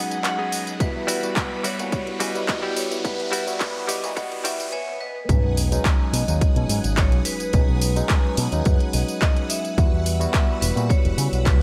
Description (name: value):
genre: nu-disco, nu disco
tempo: 107 BPM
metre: 4/4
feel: straight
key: B major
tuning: A4 = 439 Hz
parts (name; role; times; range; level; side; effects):
- vibraphone with hard mallets; melody; 0.0-11.6 s; B4 to F#5; -33 LUFS; equal; tape echo
- barky tine electric piano; accompaniment; 0.0-11.6 s; F#3 to F#5; -31 LUFS; equal; overdrive, phaser, sidechain pumping
- string machine, full ensemble; sustained chords; 0.0-11.6 s; G#4 to E6; -38 LUFS; equal; ensemble chorus, sidechain pumping
- direct-recorded clean electric guitar; riff; 0.0-5.2 s; G3 to G#5; -33 LUFS; equal; subtle chorus, low-pass filter
- picked electric bass with an envelope filter; bass; 0.0-11.6 s; E1 to C#3; -26 LUFS; equal; tube saturation, high-pass filter
- riser, swell and sub drop; sound effects; 0.1-7.5 s; none; -34 LUFS; equal; none
- house drum kit; drums; 0.1-11.6 s; handclaps, hi-hat, tambourine; -30 LUFS; equal; overdrive
- electronic kick drum; drums; 0.8-11.6 s; none; -22 LUFS; equal; overdrive
room: light reverb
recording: high-pass filter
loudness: -22 LUFS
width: mono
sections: 0.0-5.3 A section; 5.3-11.6 B section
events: build-up 0.0-5.3; clean electric guitar fill 0.0-0.8, 3.6-5.3; riser 0.1-4.7; filter sweep on tine electric piano 0.0-5.3; swell 4.2-5.3; drop 5.3-11.6; impact 5.3-7.5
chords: 0.0 B6; 0.8 Emadd9; 5.0 N.C.; 5.3 B6; 9.8 Emadd9